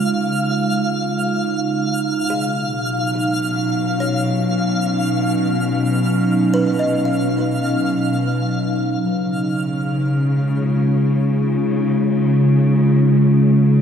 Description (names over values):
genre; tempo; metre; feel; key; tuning
ambient; free time; none; none; unclear; A4 = 439 Hz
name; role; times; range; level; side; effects
warbly tape-like pad; sustained chords; 0.0-13.8 s; B2 to E#4; -17 LUFS; equal; chorus, built-in reverb
muted studio cello section; bass; 0.0-13.8 s; B2 to C#3; -26 LUFS; left 1 dB; none
twinkling granular texture; texture; 0.0-9.1 s; E#5; -25 LUFS; left 1 dB; built-in reverb
buzzing kalimba; arpeggios; 2.3-8.7 s; G#4 to E#5; -28 LUFS; right 1 dB; diffuse ambient delay
room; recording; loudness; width
wet lush hall reverb, RT60 2.8 s; none; -16 LUFS; side -8 dB against mid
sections
0.0-9.1 A section; 9.1-13.8 B section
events
fade-in on cello section 0.0-9.1; filter sweep on ambient pad 0.0-9.1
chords
0.0 C#; 2.3 Badd9; 9.1 C#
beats
free time